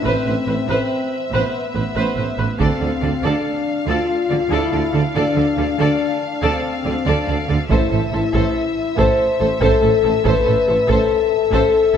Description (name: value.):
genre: cinematic, epic orchestral film score.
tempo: 94 BPM (dotted quarters).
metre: 12/8.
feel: straight.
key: A minor.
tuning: A4 = 440 Hz.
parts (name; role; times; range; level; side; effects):
warm symphonic violin section; melody; 0.0-12.0 s; E5 to F5; -28 LUFS; left 4 dB; none.
rich symphonic violin section; second line; 0.0-11.7 s; C5 to D5; -27 LUFS; left 1 dB; none.
rich symphonic viola section; accompaniment; 0.0-12.0 s; A4 to B4; -26 LUFS; right 2 dB; none.
mellow French horn section; sustained chords; 0.0-12.0 s; B3 to C5; -19 LUFS; left 4 dB; none.
rich symphonic cello section; bass; 0.0-12.0 s; A2 to D3; -25 LUFS; right 4 dB; none.
warm tuba; bass; 0.0-12.0 s; A1 to D2; -27 LUFS; right 5 dB; none.
clear symphonic double bass section; bass; 0.1-12.0 s; A1 to D2; -25 LUFS; right 5 dB; none.
taiko ensemble; drums; 2.6-3.4, 7.7-11.9 s; none; -24 LUFS; right 1 dB; none.
room: moderate concert hall reverb, RT60 2.4 s.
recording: none.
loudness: -16 LUFS.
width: side -8 dB against mid.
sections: 0.0-12.0 A section.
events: none.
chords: 0.0 Amadd9; 2.6 Dm; 7.7 Amadd9.